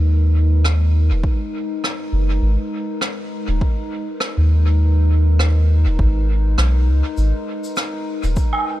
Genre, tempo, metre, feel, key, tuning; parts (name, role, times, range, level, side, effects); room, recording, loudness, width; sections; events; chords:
ambient dub; 101 BPM; 4/4; swing 56% on 16ths; G# minor; A4 = 441 Hz
warbly tape-like pad; sustained chords; 0.0-8.8 s; G#3 to B4; -26 LUFS; left 1 dB; chorus, built-in reverb
soft dub sub bass; bass; 0.0-8.3 s; D#1 to D#2; -14 LUFS; equal
rim click, shaker and woodblock; drums; 0.6-8.6 s; -26 LUFS; right 1 dB; dub echo
electronic kick drum; drums; 1.2-8.5 s; -19 LUFS; equal; overdrive
little or no reverb; -16 LUFS; side -15 dB against mid
0.0-8.8 A section
0.0 G#madd9